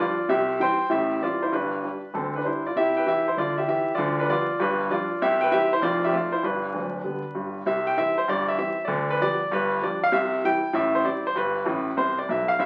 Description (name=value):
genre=jazz, stride piano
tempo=195 BPM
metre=4/4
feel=swing 66% on 8ths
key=C major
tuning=A4 = 439 Hz
part: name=clear baby grand piano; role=solo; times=0.0-12.7 s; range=D1 to G5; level=-24 LUFS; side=equal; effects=none
room=wet large studio reverb, RT60 0.9 s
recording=very old 78 rpm record, vinyl crackle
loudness=-25 LUFS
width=mono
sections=0.0-7.7 A section; 7.7-12.7 A section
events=grand piano fill 11.7-12.6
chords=0.3 C; 0.9 Am7; 1.5 G; 2.8 C; 4.0 G7/D; 4.6 G7; 5.2 C; 5.8 Fmaj7; 6.4 G; 7.7 C; 8.9 G7/D; 9.5 G7; 10.1 C; 10.7 Am7; 11.4 G